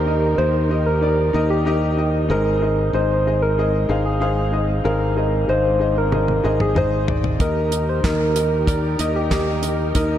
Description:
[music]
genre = piano-driven pop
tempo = 94 BPM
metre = 4/4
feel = straight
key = Eb major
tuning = A4 = 439 Hz
[part]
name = soft struck synth lead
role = melody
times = 0.0-10.2 s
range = G4 to C5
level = -22 LUFS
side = equal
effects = chorus, ping-pong delay
[part]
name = clear upright piano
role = accompaniment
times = 0.0-10.2 s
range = Ab2 to F5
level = -23 LUFS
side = left 2 dB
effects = none
[part]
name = muted symphonic string section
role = sustained chords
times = 0.0-10.2 s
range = Eb3 to Bb4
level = -31 LUFS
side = right 2 dB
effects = none
[part]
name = modern bright fingered electric bass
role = bass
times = 0.0-10.2 s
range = Ab1 to Eb2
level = -21 LUFS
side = equal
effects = none
[part]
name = damped 70s drum kit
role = drums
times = 6.1-10.1 s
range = handclaps, hi-hat, kick drum, snare drum, toms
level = -23 LUFS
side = equal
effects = none
[sound]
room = moderate lush hall reverb, RT60 2.5 s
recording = dreamy mix soaked in reverb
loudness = -17 LUFS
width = side -10 dB against mid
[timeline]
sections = 0.0-10.2 A section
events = drum fill 6.1-7.4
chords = 0.0 Eb; 2.3 Ab; 7.4 Eb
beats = 0.38 1.02 1.66 | 2.29 2.93 3.57 4.21 | 4.85 5.49 6.12 6.76 | 7.40 8.04 8.68 9.32 | 9.96

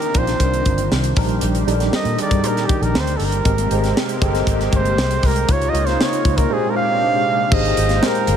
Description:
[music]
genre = polished 1980s jazz-funk pop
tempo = 118 BPM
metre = 4/4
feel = straight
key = Eb major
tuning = A4 = 438 Hz
[part]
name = clear flugelhorn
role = melody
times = 0.0-8.4 s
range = G4 to F5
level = -21 LUFS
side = right 3 dB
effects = tape echo
[part]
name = tine electric piano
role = accompaniment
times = 0.0-8.4 s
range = Bb2 to Db5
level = -22 LUFS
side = left 1 dB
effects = overdrive, fast stereo tremolo, wide subtle chorus
[part]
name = warm analog pad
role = sustained chords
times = 0.0-8.4 s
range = Bb2 to G5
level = -26 LUFS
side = equal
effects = chorus
[part]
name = tight funk drum kit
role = drums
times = 0.0-8.4 s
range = crash cymbal, hi-hat, kick drum, snare drum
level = -21 LUFS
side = equal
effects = none
[part]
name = vintage muted fingered electric bass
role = bass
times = 0.1-8.4 s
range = G1 to Bb2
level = -21 LUFS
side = equal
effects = none
[sound]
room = moderate huge ambient reverb, RT60 7.4 s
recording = dreamy mix soaked in reverb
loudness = -15 LUFS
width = side -8 dB against mid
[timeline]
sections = 0.0-7.5 A section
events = flugelhorn solo 0.0-7.5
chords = 0.0 Cm9; 1.2 Ebmaj7/Bb; 3.5 Abmaj9; 5.5 Db69; 6.5 Bb13; 7.5 Abmaj9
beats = 0.40 0.91 | 1.42 1.93 2.44 2.94 | 3.45 3.96 4.47 4.98 | 5.48 5.99 6.50 7.01 | 7.51 8.02

